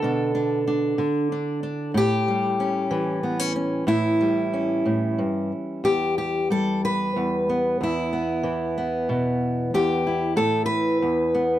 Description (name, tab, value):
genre	folk, solo fingerstyle acoustic guitar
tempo	62 BPM (dotted quarters)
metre	6/8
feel	rubato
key	E dorian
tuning	A4 = 440 Hz
part	fingerpicked steel-string acoustic guitar	solo	0.0-11.6 s	E2 to B4	-21 LUFS	equal	none
room	little or no reverb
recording	dry, close 1970s-style studio recording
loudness	-21 LUFS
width	side -12 dB against mid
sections	0.0-5.8 A section; 5.8-11.6 B section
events	none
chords	0.0 Bm7; 1.9 A7; 5.8 Em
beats	| 0.01 0.98 | 1.94 2.91 | 3.87 4.85 | 5.84 6.84 | 7.82 8.78 | 9.74 10.70